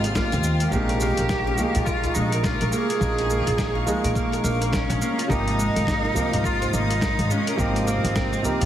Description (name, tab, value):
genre	organic downtempo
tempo	105 BPM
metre	4/4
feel	swing 60% on 16ths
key	Bb dorian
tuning	A4 = 440 Hz
part	rich cello	melody	0.0-8.7 s	C4 to Ab4	-27 LUFS	equal	ping-pong delay
part	felt-muted upright piano	accompaniment	0.0-8.7 s	C3 to G5	-28 LUFS	right 2 dB	sidechain pumping, ping-pong delay
part	rich chamber string section	sustained chords	0.0-8.7 s	Ab3 to F6	-33 LUFS	left 1 dB	sidechain pumping
part	oud	arpeggios	0.0-8.7 s	Ab3 to Bb4	-28 LUFS	right 1 dB	ping-pong delay
part	upright bass	bass	0.0-8.7 s	Ab1 to Bb2	-26 LUFS	equal	sidechain pumping
part	dusty soul sampler-style drum kit	drums	0.0-8.7 s	cabasa, hi-hat, snare drum	-31 LUFS	equal	none
part	electronic kick drum	drums	0.2-8.3 s	none	-28 LUFS	equal	none
part	udu	percussion	1.6-8.7 s	none	-31 LUFS	equal	none
room	moderate lush hall reverb, RT60 2.2 s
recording	heavily compressed radio sound, multiband compression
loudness	-20 LUFS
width	side -11 dB against mid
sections	0.0-8.7 A section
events	none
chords	0.0 Ab6; 0.7 Bbm7; 5.3 Ab6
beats	0.16 | 0.73 1.30 1.87 2.44 | 3.01 3.59 4.16 4.73 | 5.30 5.87 6.44 7.01 | 7.59 8.16